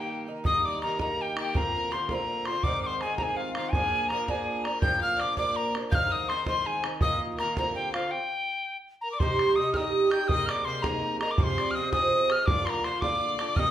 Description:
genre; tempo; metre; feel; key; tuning
celtic folk, Celtic jig; 110 BPM (dotted quarters); 6/8; straight; C minor from 9.2 s; A4 = 442 Hz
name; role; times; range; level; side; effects
wooden whistle; melody; 0.0-13.7 s; F5 to G6; -28 LUFS; left 1 dB; none
bright fiddle; second line; 0.0-13.7 s; F4 to G5; -36 LUFS; left 4 dB; none
Irish bouzouki; accompaniment; 0.0-13.7 s; G2 to Ab4; -30 LUFS; right 3 dB; none
bodhran; percussion; 0.4-13.7 s; none; -30 LUFS; right 1 dB; none
room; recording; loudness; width
wet large studio reverb, RT60 0.8 s; band playing live in one room; -25 LUFS; side -11 dB against mid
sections
0.5-9.2 A section; 9.2-13.7 B section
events
stop 8.1-9.2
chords
0.5 Eb; 1.5 Bbadd9; 2.6 Ab; 3.7 Bb; 5.9 Ab; 7.0 Bbsus4; 7.6 Bbadd9; 8.1 N.C.; 9.2 Cm; 10.3 Abadd9; 11.4 Fm; 12.5 Bb

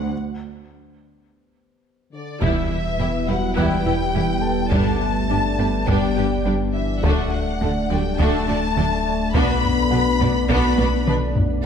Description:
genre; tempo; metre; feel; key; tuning
cinematic, hybrid orchestral and electronic film score; 104 BPM; 4/4; straight; E minor; A4 = 439 Hz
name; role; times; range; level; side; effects
warm symphonic violin section; melody; 0.0-11.1 s; D5 to B5; -26 LUFS; left 3 dB; none
dark analog pad; sustained chords; 0.0-11.7 s; D3 to D5; -27 LUFS; left 1 dB; chorus
rich symphonic cello section; bass; 0.0-11.2 s; E2 to D3; -30 LUFS; right 3 dB; none
warm concert grand piano; texture; 0.0-11.7 s; G4 to F#6; -38 LUFS; left 2 dB; none
dark French horn section; sustained chords; 2.1-11.1 s; D3 to B3; -27 LUFS; left 6 dB; none
rich symphonic violin section; second line; 2.4-11.1 s; A3 to D5; -30 LUFS; left 2 dB; none
clear symphonic viola section; accompaniment; 2.4-11.2 s; G3 to E4; -29 LUFS; right 1 dB; none
mallet-like synth pluck; arpeggios; 2.4-11.2 s; D3 to B4; -29 LUFS; right 1 dB; chorus, ping-pong delay
rich studio double bass section; bass; 2.4-11.2 s; E1 to D2; -28 LUFS; right 4 dB; none
sub bass with octave; bass; 2.4-11.7 s; D1 to B1; -26 LUFS; equal; none
taiko ensemble; drums; 2.4-11.6 s; none; -24 LUFS; equal; none
room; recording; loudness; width
moderate scoring stage reverb, RT60 1.6 s; none; -18 LUFS; side -7 dB against mid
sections
0.0-2.4 A section; 2.4-11.7 A section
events
break 0.1-2.4; drum fill 10.8-11.7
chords
0.1 N.C.; 2.4 Em; 4.7 G; 7.0 D; 9.3 Bm

